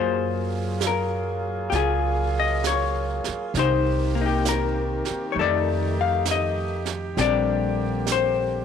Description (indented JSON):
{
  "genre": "jazz ballad",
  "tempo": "66 BPM",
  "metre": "4/4",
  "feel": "swing 69% on 8ths",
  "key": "unclear",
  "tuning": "A4 = 442 Hz",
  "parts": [
    { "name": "vintage hollow-body jazz guitar", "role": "accompaniment", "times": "0.0-8.6 s", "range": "Eb3 to F5", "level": "-24 LUFS", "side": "left 9 dB", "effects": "none" },
    { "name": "warm saxophone section", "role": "sustained chords", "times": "0.0-8.6 s", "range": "D3 to Ab4", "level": "-29 LUFS", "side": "right 2 dB", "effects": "none" },
    { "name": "upright bass", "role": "bass", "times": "0.0-8.6 s", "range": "Bb1 to Gb2", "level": "-27 LUFS", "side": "right 2 dB", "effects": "none" },
    { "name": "jazz brush drum kit", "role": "drums", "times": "0.8-8.6 s", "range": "brushed snare drum, hi-hat, snare drum", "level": "-32 LUFS", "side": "right 11 dB", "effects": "none" }
  ],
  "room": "light reverb, small room ambience",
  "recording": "1960s-style stereo with parts hard left and right",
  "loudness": "-21 LUFS",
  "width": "side -7 dB against mid",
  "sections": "0.0-8.6 A section",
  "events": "none",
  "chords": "0.0 Gbmaj9; 3.5 Cm7; 5.4 F9; 7.2 Bb69",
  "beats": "0.80 1.72 2.63 | 3.54 4.45 5.36 6.26 | 7.17 8.07"
}